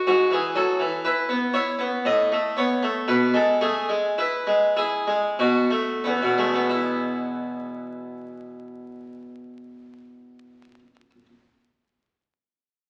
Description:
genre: classical, baroque-style suite movement for harpsichord.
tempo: 44-64 BPM.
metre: 3/4.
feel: rubato.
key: E major.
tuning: A4 = 440 Hz.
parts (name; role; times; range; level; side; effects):
harpsichord; solo; 0.0-11.3 s; E2 to D#5; -24 LUFS; equal; none.
room: wet recital hall reverb, RT60 1.4 s.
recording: very old 78 rpm record, vinyl crackle.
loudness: -23 LUFS.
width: mono.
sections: 0.0-6.7 A section; 6.7-10.6 B section.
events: slowing down 0.0-6.7.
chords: 0.1 E/G#; 2.0 A; 3.1 E/B; 5.4 B5; 6.7 E.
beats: | 0.08 1.04 2.03 | 3.06 4.17 5.36 | 6.69 8.00 9.31.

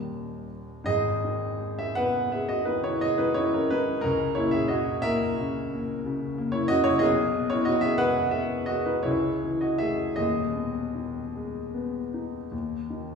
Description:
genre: classical, romantic nocturne for solo piano.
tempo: 50-62 BPM (dotted quarters).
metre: 9/8.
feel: rubato.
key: G# minor.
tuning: A4 = 440 Hz.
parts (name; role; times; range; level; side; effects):
warm baby grand piano; solo; 0.0-13.2 s; D#1 to F#5; -24 LUFS; equal; none.
room: wet recital hall reverb, RT60 1.4 s.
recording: heard from further back in the room, small room ambience.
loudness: -24 LUFS.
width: side -5 dB against mid.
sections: 0.9-13.2 A section.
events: none.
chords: 0.0 D#; 0.9 G#m; 4.1 A#dim/C#; 7.1 G#m/B; 9.1 A/C#; 10.2 G#m/D#; 12.5 N.C..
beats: | 0.88 1.98 3.05 | 4.08 5.06 6.07 | 7.06 8.03 9.08 | 10.21 11.37 12.52.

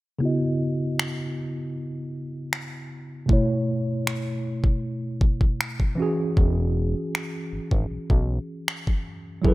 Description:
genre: contemporary R&B.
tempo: 78 BPM.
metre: 4/4.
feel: straight.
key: C# minor.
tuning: A4 = 442 Hz.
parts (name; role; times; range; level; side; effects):
mellow tine electric piano; accompaniment; 0.2-9.5 s; B2 to D#5; -26 LUFS; right 1 dB; medium stereo tremolo, low-pass filter.
smooth R&B drum kit; drums; 1.0-9.5 s; finger snaps, kick drum; -22 LUFS; equal; none.
fat analog bass; bass; 6.4-9.5 s; E1 to B1; -25 LUFS; equal; none.
room: little or no reverb.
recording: none.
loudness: -23 LUFS.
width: side -19 dB against mid.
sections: 0.2-9.5 A section.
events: filter sweep on tine electric piano 0.2-9.5.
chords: 0.2 C#m11; 3.3 B9sus4; 6.0 E69.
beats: | 0.21 0.98 1.75 2.52 | 3.29 4.06 4.83 5.60 | 6.37 7.14 7.91 8.68 | 9.45.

